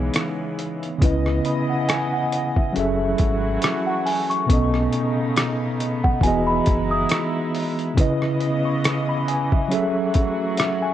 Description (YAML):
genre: lo-fi hip hop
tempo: 69 BPM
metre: 4/4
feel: swing 56% on 16ths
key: C# minor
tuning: A4 = 441 Hz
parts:
  - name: mellow tine electric piano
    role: accompaniment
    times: 0.0-10.9 s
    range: B2 to C#6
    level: -22 LUFS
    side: equal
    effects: medium stereo tremolo
  - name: warm studio string section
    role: sustained chords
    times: 0.0-10.9 s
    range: C#3 to D#5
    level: -30 LUFS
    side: equal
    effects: none
  - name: sub bass with octave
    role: bass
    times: 0.0-7.1 s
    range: E1 to C#2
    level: -25 LUFS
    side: equal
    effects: none
  - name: lo-fi sampler-style drum kit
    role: drums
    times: 0.1-10.8 s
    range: hi-hat, kick drum, rim click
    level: -21 LUFS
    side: equal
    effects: overdrive, vintage 12-bit sampler grit
  - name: small celesta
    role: second line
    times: 3.9-7.9 s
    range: F#5 to D#6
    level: -25 LUFS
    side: left 1 dB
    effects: tape echo
room: light reverb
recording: cassette tape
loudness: -19 LUFS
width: side -11 dB against mid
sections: 0.0-1.0 A section; 1.0-10.9 B section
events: tine electric piano solo 0.0-1.0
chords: 0.0 C#m7; 1.0 C#m9; 2.8 F#m9; 4.5 B9; 6.2 Emaj7; 8.0 C#m9; 9.7 F#m9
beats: 0.14 | 1.01 1.89 2.75 3.62 | 4.49 5.36 6.23 7.10 | 7.97 8.84 9.71 10.58